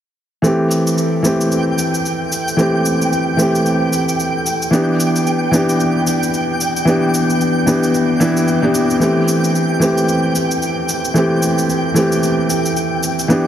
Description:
organic downtempo; 112 BPM; 4/4; swing 59% on 16ths; A minor; A4 = 439 Hz
felt-muted upright piano; accompaniment; 0.4-13.5 s; E3 to G4; -14 LUFS; equal; digital delay
cabasa; drums; 0.4-13.4 s; -25 LUFS; left 1 dB; overdrive
twinkling granular texture; texture; 1.1-13.5 s; G5; -23 LUFS; right 2 dB; built-in reverb
moderate huge ambient reverb, RT60 5.5 s; heavily compressed radio sound; -14 LUFS; side -10 dB against mid
0.4-13.5 A section
0.4 Am7; 4.7 G6; 9.0 Am7

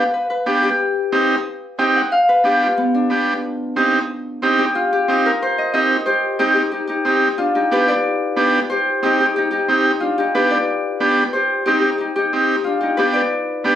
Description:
latin; 182 BPM; 4/4; straight; C harmonic minor; A4 = 444 Hz
Celtic harp; melody; 0.0-13.8 s; B3 to G5; -18 LUFS; left 2 dB
overdriven combo organ; accompaniment; 0.0-13.8 s; B3 to G4; -17 LUFS; right 2 dB
moderate studio reverb, RT60 0.7 s; recorded on a phone in the room, studio reverb; -15 LUFS; side -11 dB against mid
0.0-6.1 A section; 6.1-13.8 B section
harp solo 0.0-6.1
0.0 G; 0.8 Cm; 2.1 G; 3.4 Cm; 7.4 G; 8.7 Cm; 10.0 G; 11.3 Cm; 12.7 G

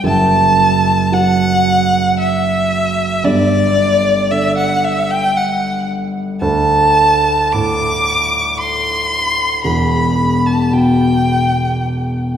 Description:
classical, romantic duo for violin and grand piano; 56 BPM; 3/4; rubato; G major; A4 = 440 Hz
rich violin; melody; 0.0-12.3 s; D5 to D6; -14 LUFS; equal
dark grand piano; accompaniment; 0.0-12.4 s; E1 to F#3; -16 LUFS; right 1 dB
wet concert hall reverb, RT60 2.1 s; heard from further back in the room; -12 LUFS; side -9 dB against mid
0.0-12.4 A section
0.0 N.C.; 3.3 G5; 6.4 D5; 9.6 Em

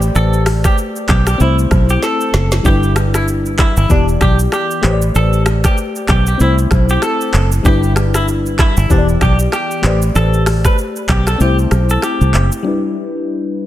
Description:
afrobeats; 96 BPM; 4/4; swing 58% on 16ths; A4 = 441 Hz
FM electric piano; accompaniment; 0.0-13.7 s; E3 to D5; -19 LUFS; left 4 dB; chorus, low-pass filter
fingered electric bass; bass; 0.0-12.5 s; E1 to C2; -13 LUFS; equal
afro-pop drum kit; drums; 0.0-12.6 s; finger snaps, handclaps, hi-hat, kick drum, rim click, shaker, snare drum; -17 LUFS; equal
direct-recorded clean electric guitar; melody; 0.2-12.5 s; D4 to B4; -20 LUFS; right 1 dB; lush chorus, analog delay
light reverb, digital ambience; -11 LUFS; side -13 dB against mid
0.0-12.7 A section; 12.7-13.7 B section
drum fill 2.0-2.7; kick muted 11.4-12.7; filter sweep on FM electric piano 12.7-13.7
0.0 Am11; 1.4 C6; 2.7 G6; 3.9 Em7; 4.8 Am11; 6.4 C6; 7.7 G6; 8.9 Em7; 9.8 Am11; 11.4 C6; 12.7 G6

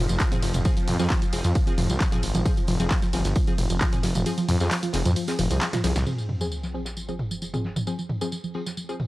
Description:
driving peak-time techno; 133 BPM; 4/4; straight; F minor; A4 = 441 Hz
detuned saw bass; bass; 0.0-6.0 s; F1 to F2; -24 LUFS; equal; sidechain pumping
swarming drone; drone; 0.0-6.1 s; F3 to C4; -38 LUFS; equal
warbly dusty pluck; riff; 0.1-9.0 s; F3; -30 LUFS; equal; chorus, sidechain pumping, analog delay
punchy analog drum machine; drums; 0.1-9.1 s; handclaps, hi-hat, ride cymbal, snare drum, tambourine, toms; -29 LUFS; equal
crisp fusion drum kit; drums; 0.2-9.1 s; hi-hat, snare drum, tambourine; -42 LUFS; left 1 dB
electronic kick drum; drums; 0.2-3.9 s; -24 LUFS; equal
wavetable chord stab; stabs; 0.3-8.9 s; F3 to Ab4; -34 LUFS; left 1 dB; sidechain pumping, tape echo
sub drop; sound effects; 6.1-7.9 s; -33 LUFS; equal
digital ambience; dry, gritty hardware recording, transformer saturation, cassette tape; -22 LUFS; side -18 dB against mid
0.0-6.1 A section; 6.1-9.1 B section
drop 0.0-6.1; kick drops out 4.3-6.1; drum fill 5.6-6.1; impact 6.1-7.9; filter sweep on synth arpeggio sound 6.1-9.1
0.0 Fm

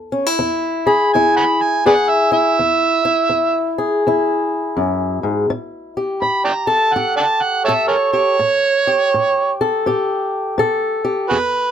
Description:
acoustic country blues, solo or duo; 82 BPM; 4/4; swing 63% on 8ths; A4 = 439 Hz
fingerpicked swing-style acoustic guitar; accompaniment; 0.0-11.7 s; E2 to A4; -17 LUFS; left 2 dB
overdriven harmonica; melody; 0.9-11.7 s; F#4 to B5; -15 LUFS; right 3 dB
little or no reverb; close, detailed microphones; -14 LUFS; side -8 dB against mid
0.0-11.7 A section
0.0 E; 5.5 A7

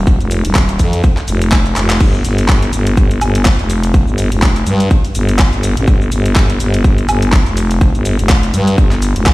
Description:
bass house; 124 BPM; 4/4; swing 57% on 16ths; A4 = 437 Hz
growling FM bass; bass; 0.0-9.3 s; Eb1 to G2; -13 LUFS; equal; tube saturation, sidechain pumping
electronic kick drum; drums; 0.1-9.3 s; -11 LUFS; equal; overdrive, studio reverb
garage drum kit; drums; 0.1-9.3 s; crash cymbal, handclaps, hi-hat, shaker, woodblock; -20 LUFS; equal; overdrive, studio reverb
digital ambience; played on a big sound system in a bare room, stone room reverb; -10 LUFS; side -19 dB against mid
0.0-9.3 A section
drum fill 1.8

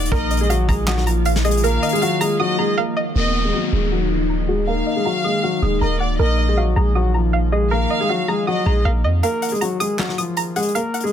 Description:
hip hop, trap; 158 BPM; 4/4; half-time; Eb minor; A4 = 436 Hz
warm studio violin section; second line; 0.0-8.8 s; D5 to F5; -26 LUFS; equal; tape echo
string-like resonator pluck; accompaniment; 0.0-11.1 s; Gb4 to F6; -25 LUFS; right 3 dB; chorus, low-pass filter
glassy FM pad; sustained chords; 0.0-9.2 s; Eb3 to F4; -26 LUFS; left 2 dB; ensemble chorus, built-in reverb, low-pass filter
warm 808-style bass; bass; 0.0-9.2 s; Eb1 to F2; -19 LUFS; equal
dark concert grand piano; melody; 0.1-11.1 s; F3 to Bb4; -22 LUFS; left 2 dB; low-pass filter
soft brush drum kit; drums; 0.1-2.3, 9.2-11.1 s; handclaps, hi-hat, kick drum, rim click, snare drum; -25 LUFS; left 1 dB
downlifter; sound effects; 3.2-6.2 s; -28 LUFS; left 2 dB
little or no reverb; dense, heavily limited modern master; -16 LUFS; side -9 dB against mid
0.0-3.2 A section; 3.2-9.2 B section; 9.2-11.1 C section
drums muted 2.4-3.2; filter sweep 3.2-9.2; break 9.2-11.1
0.1 Bbsus4; 3.2 Ebmadd9; 6.2 Bbsus4; 9.2 Ebmadd9

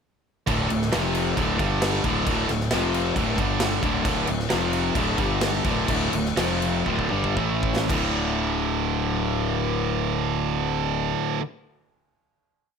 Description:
hard rock; 113-134 BPM; 4/4; straight; A4 = 440 Hz
overdriven semi-hollow guitar; riff; 0.5-11.4 s; D2 to A3; -26 LUFS; left 10 dB
tight distorted guitar; riff; 0.5-11.4 s; D2 to A3; -26 LUFS; right 12 dB; distortion
fuzz fingered electric bass; bass; 0.5-11.1 s; D1 to A1; -29 LUFS; equal; overdrive
big rock drum kit; drums; 0.5-8.0 s; crash cymbal, kick drum, snare drum; -28 LUFS; equal
studio reverb; -21 LUFS; side -6 dB against mid
0.5-7.9 riff; 7.9-12.1 final chord
slowing down 4.1-7.9; drum fill 6.9-7.9
0.5 D5; 0.9 F5; 1.4 D5; 1.6 G5; 2.0 D5; 2.7 F5; 3.2 D5; 3.4 G5; 3.8 D5; 4.5 F5; 5.0 D5; 5.2 G5; 5.7 D5; 6.4 F5; 6.9 D5; 7.4 A5; 7.9 D5

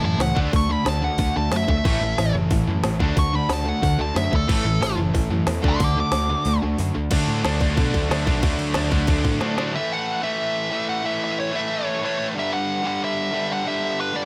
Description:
punk rock; 183 BPM; 4/4; straight; A mixolydian from 9.7 s; A4 = 440 Hz
nasal lead guitar with a parked wah; melody; 0.0-6.6, 9.8-14.2 s; A4 to D6; -27 LUFS; equal; overdrive
biting overdriven guitar; riff; 0.0-9.7 s; A2 to A4; -33 LUFS; equal
crunchy overdriven guitar; riff; 0.0-9.7 s; A2 to D4; -30 LUFS; equal
distorted electric guitar; riff; 0.0-14.2 s; G2 to D4; -28 LUFS; equal; overdrive
overdriven picked electric bass; bass; 0.0-9.7 s; F#1 to B2; -27 LUFS; equal
organic electronic drum kit; drums; 0.2-9.7 s; crash cymbal, hi-hat, kick drum, snare drum; -26 LUFS; equal
light reverb; -22 LUFS; mono
0.0-7.1 A section; 7.1-9.7 B section; 9.7-14.2 C section
lead electric guitar solo 0.0-7.1; kick and snare drop out 6.5-7.1; drum fill 9.4-9.7
0.4 D; 1.9 A; 3.0 D; 4.5 A; 5.6 D; 9.7 A; 12.3 G5

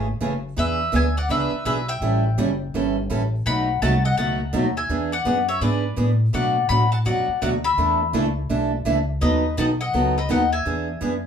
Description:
country, western swing; 167 BPM; 4/4; swing 63% on 8ths; A4 = 440 Hz
mandolin; melody; 0.0-11.3 s; B4 to B5; -23 LUFS; left 4 dB
picked acoustic archtop guitar; accompaniment; 0.0-11.1 s; B2 to A4; -24 LUFS; right 2 dB
upright bass; bass; 0.0-11.3 s; F#1 to B2; -24 LUFS; equal
moderate studio ambience, RT60 0.5 s; band playing live in one room; -19 LUFS; side -7 dB against mid
0.6-11.3 A section
0.0 Amaj7; 0.6 E7; 2.0 A7; 3.5 B7; 4.9 E7; 6.3 Bm7; 7.8 E7sus4; 9.2 B7; 10.7 E7

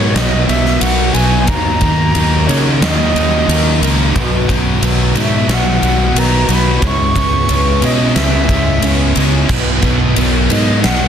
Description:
rock, shoegaze and dream pop; 90 BPM; 4/4; straight; B major; A4 = 440 Hz
bright reedy concert flute; melody; 0.0-11.1 s; C#5 to C#6; -19 LUFS; right 1 dB; slapback echo
icy glass pad; sustained chords; 0.0-11.1 s; B3 to G#5; -25 LUFS; right 1 dB
picked plugged-in twelve-string acoustic guitar; arpeggios; 0.0-11.1 s; F#4 to C#5; -27 LUFS; left 10 dB; lush chorus, slapback echo
crunchy overdriven guitar; riff; 0.0-11.1 s; B2 to E4; -21 LUFS; right 10 dB; reverse reverb
crunchy overdriven guitar; riff; 0.0-11.1 s; B2 to D#4; -20 LUFS; right 1 dB
thick fuzz guitar; riff; 0.0-11.1 s; B2 to D#4; -21 LUFS; left 8 dB; distortion, analog chorus
fingered electric bass; bass; 0.0-11.1 s; B1 to C#3; -16 LUFS; equal
huge arena drum kit; drums; 0.2-11.0 s; crash cymbal, kick drum, ride cymbal, snare drum; -17 LUFS; equal; soft clipping on kick
light reverb, small room ambience; dense, heavily limited modern master; -11 LUFS; side -8 dB against mid
0.0-11.1 A section
0.0 Bmaj7; 1.5 D#m7; 4.2 Bmaj7; 6.8 C#m7; 9.5 Bmaj7

